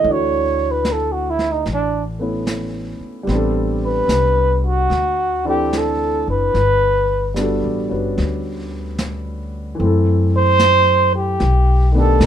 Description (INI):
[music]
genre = jazz ballad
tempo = 74 BPM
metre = 4/4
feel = swing 66% on 8ths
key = unclear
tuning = A4 = 440 Hz
[part]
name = breathy trumpet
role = melody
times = 0.0-12.3 s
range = D4 to D#5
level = -16 LUFS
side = right 2 dB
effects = none
[part]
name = dark upright piano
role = accompaniment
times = 0.0-12.3 s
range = D#3 to C#5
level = -23 LUFS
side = equal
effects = none
[part]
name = upright bass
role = bass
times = 0.0-12.3 s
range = F#1 to B2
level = -20 LUFS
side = left 1 dB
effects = none
[part]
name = vintage brush drum kit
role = drums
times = 0.0-12.3 s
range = brushed snare drum, hi-hat, snare drum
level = -26 LUFS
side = right 1 dB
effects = none
[sound]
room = light reverb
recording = minimal, uncompressed stereo recording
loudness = -15 LUFS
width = side -10 dB against mid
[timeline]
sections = 0.0-12.3 A section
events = trumpet solo 0.0-12.3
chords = 0.0 Dmaj9; 3.3 Am11; 4.9 D9; 6.5 Gmaj9; 9.8 F#m7b5; 11.4 B7alt